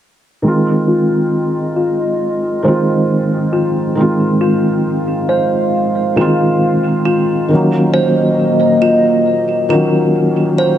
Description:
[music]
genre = trip hop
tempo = 68 BPM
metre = 4/4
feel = swing 54% on 16ths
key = F phrygian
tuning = A4 = 441 Hz
[part]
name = felt-muted upright piano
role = accompaniment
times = 0.4-10.8 s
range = Eb3 to F4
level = -14 LUFS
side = right 1 dB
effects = harmonic tremolo, low-pass filter, tape echo
[part]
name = dark analog pad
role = sustained chords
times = 1.4-10.8 s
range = Ab3 to F5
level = -18 LUFS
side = equal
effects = chorus, phaser
[part]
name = music box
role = arpeggios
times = 0.9-10.8 s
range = F4 to C5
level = -18 LUFS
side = left 2 dB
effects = low-pass filter, tape echo
[sound]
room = light reverb, studio ambience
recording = none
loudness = -12 LUFS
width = side -11 dB against mid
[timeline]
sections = 0.4-10.8 A section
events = filter sweep on analog synth pad 0.4-10.8; filter sweep on music box 0.4-10.8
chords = 0.4 Fm7; 7.5 Gb6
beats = | 0.44 1.32 2.20 3.09 | 3.97 4.85 5.73 6.62 | 7.50 8.38 9.26 10.14

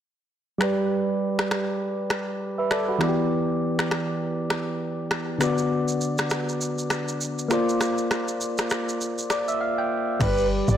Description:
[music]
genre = afrobeats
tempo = 100 BPM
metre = 4/4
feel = swing 58% on 16ths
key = G major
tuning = A4 = 439 Hz
[part]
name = soft electric-piano-like synth keys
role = accompaniment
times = 0.6-10.8 s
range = D3 to G5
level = -24 LUFS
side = equal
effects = chorus, low-pass filter
[part]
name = afro-pop drum kit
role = drums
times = 0.6-10.8 s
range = crash cymbal, finger snaps, kick drum, rim click, shaker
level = -29 LUFS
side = equal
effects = soft clipping on snare
[part]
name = breathy flute-like synth lead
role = melody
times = 10.2-10.8 s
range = B4 to D5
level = -24 LUFS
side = right 1 dB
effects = chorus
[part]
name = woody log drum bass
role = bass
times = 10.2-10.8 s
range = G1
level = -23 LUFS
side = equal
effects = none
[sound]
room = moderate lush hall reverb, RT60 2.1 s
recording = blown-out, overdriven recording, overdrive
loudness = -23 LUFS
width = side -10 dB against mid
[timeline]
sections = 0.6-10.2 A section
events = filter sweep on synth keys 0.6-10.2; synth keys fill 9.0-10.2; drums muted 9.6-10.2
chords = 0.6 G; 3.0 Em7; 5.4 D6; 7.5 Bbadd9; 10.2 G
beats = | 0.61 1.21 1.81 2.41 | 3.01 3.61 4.21 4.81 | 5.41 6.01 6.61 7.21 | 7.81 8.41 9.01 9.61 | 10.21

